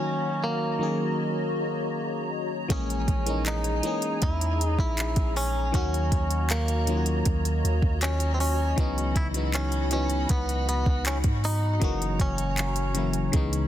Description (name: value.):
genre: contemporary R&B.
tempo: 79 BPM.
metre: 4/4.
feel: straight.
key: unclear.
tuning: A4 = 437 Hz.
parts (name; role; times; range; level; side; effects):
direct-recorded clean electric guitar; melody; 0.0-13.7 s; A#3 to E4; -30 LUFS; right 1 dB; digital delay.
FM electric piano; accompaniment; 0.0-13.7 s; C#3 to G#4; -30 LUFS; left 2 dB; chorus, phaser.
hollow soft pad; sustained chords; 0.0-13.7 s; E3 to B5; -35 LUFS; left 2 dB; ensemble chorus.
soft 808-style bass; bass; 2.7-13.7 s; F#1 to G#2; -27 LUFS; equal; none.
smooth R&B drum kit; drums; 2.7-13.7 s; handclaps, hi-hat, kick drum; -27 LUFS; equal; none.
room: little or no reverb.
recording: dense, heavily limited modern master.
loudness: -24 LUFS.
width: side -12 dB against mid.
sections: 0.0-13.7 A section.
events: none.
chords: 0.0 D#m7; 2.7 A#m7b5; 5.7 D#m7; 8.8 C#m11; 11.8 F#7.